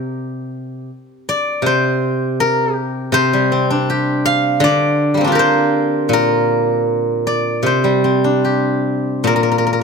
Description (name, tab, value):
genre	chinese traditional, Chinese solo plucked strings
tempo	80 BPM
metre	4/4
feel	rubato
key	C shang mode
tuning	A4 = 439 Hz
part	steel-string zither	solo	0.0-9.8 s	Bb2 to F5	-14 LUFS	equal	none
room	moderate recital hall reverb, RT60 1.7 s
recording	close, detailed microphones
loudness	-14 LUFS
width	side -5 dB against mid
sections	0.0-9.8 A section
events	none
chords	none